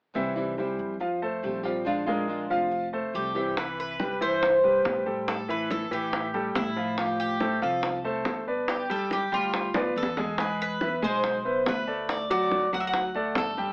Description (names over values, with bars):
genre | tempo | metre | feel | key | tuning
latin, Cuban son and guajira | 141 BPM | 4/4 | straight | C major | A4 = 441 Hz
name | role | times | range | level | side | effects
nylon-string guitar | accompaniment | 0.1-3.6 s | C3 to G4 | -32 LUFS | equal | none
clear grand piano | arpeggios | 0.1-13.7 s | E3 to Ab5 | -32 LUFS | equal | none
upright bass | bass | 0.1-13.7 s | F1 to A2 | -41 LUFS | equal | none
Cuban tres | melody | 3.2-13.7 s | E4 to F#5 | -31 LUFS | equal | none
bongos | percussion | 3.6-13.7 s | none | -33 LUFS | equal | none
room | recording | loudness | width
moderate studio reverb, RT60 0.5 s | AM radio sound | -28 LUFS | mono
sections
0.2-3.6 A section; 3.6-13.7 B section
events
drum fill 9.7-10.4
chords
0.2 C; 1.0 Fadd9; 1.9 Bb7; 2.7 Fadd9; 3.6 Cmaj7; 5.3 A5; 7.0 F; 8.7 G; 10.4 E; 12.1 D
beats
| 0.15 0.58 1.01 1.44 | 1.86 2.29 2.72 3.14 | 3.57 4.00 4.42 4.85 | 5.28 5.70 6.13 6.55 | 6.98 7.41 7.83 8.26 | 8.68 9.11 9.54 9.96 | 10.39 10.81 11.24 11.66 | 12.09 12.51 12.94 13.36